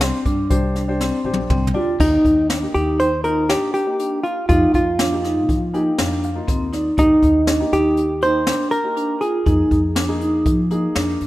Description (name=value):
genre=progressive instrumental, band music in an uneven meter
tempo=120 BPM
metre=5/4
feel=straight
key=unclear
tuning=A4 = 440 Hz
part: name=hollow-body jazz guitar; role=melody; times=0.0-11.3 s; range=Eb4 to D5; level=-19 LUFS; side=equal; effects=digital delay
part: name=dark concert grand piano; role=accompaniment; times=0.0-11.2 s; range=Bb3 to Ab5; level=-29 LUFS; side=left 2 dB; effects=none
part: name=vibraphone with soft mallets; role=arpeggios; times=0.0-11.2 s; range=C4 to F4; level=-20 LUFS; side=right 1 dB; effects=none
part: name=upright bass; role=bass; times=0.0-11.3 s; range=Bb1 to F3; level=-24 LUFS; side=equal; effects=none
part: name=jazz brush drum kit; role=drums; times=0.0-11.3 s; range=crash cymbal, hi-hat, kick drum, snare drum, toms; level=-22 LUFS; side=equal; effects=none
room=light reverb, studio reverb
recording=rough home demo mix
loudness=-16 LUFS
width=side -16 dB against mid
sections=0.0-2.0 A section; 2.0-11.3 B section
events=drum fill 1.0-2.0; grand piano fill 1.3-2.0, 5.5-7.0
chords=0.0 Csus2; 2.0 Ebmaj7; 4.5 F5; 7.0 Ebmaj7; 9.5 Fm7